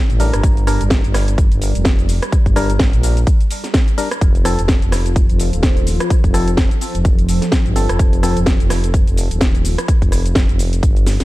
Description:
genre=bass house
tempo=127 BPM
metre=4/4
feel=swing 57% on 16ths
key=unclear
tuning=A4 = 441 Hz
part: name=sweeping resonant pad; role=sustained chords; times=0.0-11.2 s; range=F3 to D5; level=-26 LUFS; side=equal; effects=chorus, sidechain pumping
part: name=growling FM bass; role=bass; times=0.1-11.2 s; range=Eb1 to Bb1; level=-17 LUFS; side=equal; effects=sidechain pumping
part: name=house drum kit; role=drums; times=0.1-11.2 s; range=hi-hat, rim click, shaker, snare drum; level=-22 LUFS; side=equal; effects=overdrive
part: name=percussive organ stab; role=stabs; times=0.2-8.4 s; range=F3 to Bb4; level=-24 LUFS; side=left 2 dB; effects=chorus, sidechain pumping, dub echo
part: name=electronic kick drum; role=drums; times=0.4-10.9 s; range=none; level=-14 LUFS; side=equal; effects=none
room=little or no reverb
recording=dark, warm production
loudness=-13 LUFS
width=side -18 dB against mid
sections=0.0-11.2 A section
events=drum fill 11.1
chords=0.0 Gm; 4.2 F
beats=| 0.43 0.91 1.38 1.85 | 2.32 2.80 3.27 3.74 | 4.21 4.69 5.16 5.63 | 6.10 6.58 7.05 7.52 | 7.99 8.47 8.94 9.41 | 9.88 10.36 10.83

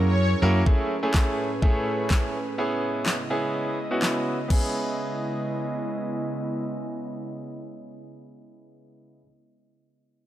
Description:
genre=dance-pop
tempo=125 BPM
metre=4/4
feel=straight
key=C# minor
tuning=A4 = 440 Hz
part: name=bright grand piano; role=accompaniment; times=0.0-9.2 s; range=A3 to A#4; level=-28 LUFS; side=right 1 dB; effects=sidechain pumping, low-pass filter
part: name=airy breathy pad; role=sustained chords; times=0.0-9.1 s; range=A2 to D#5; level=-31 LUFS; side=right 1 dB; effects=chorus, sidechain pumping, low-pass filter
part: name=vintage muted fingered electric bass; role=bass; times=0.0-0.6 s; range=F#2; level=-20 LUFS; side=equal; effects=sidechain pumping
part: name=smooth R&B drum kit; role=drums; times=0.7-4.6 s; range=crash cymbal, handclaps, kick drum, snare drum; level=-24 LUFS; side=equal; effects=none
room=light reverb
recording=dry, gritty hardware recording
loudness=-23 LUFS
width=side -13 dB against mid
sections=0.7-4.5 A section; 4.5-8.3 B section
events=break 0.0-0.7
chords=0.0 F#7; 0.7 Amaj7; 2.6 C#m7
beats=0.18 | 0.66 1.14 1.62 2.10 | 2.58 3.06 3.54 4.02 | 4.50 4.98 5.46 5.94 | 6.42 6.90 7.38 7.86

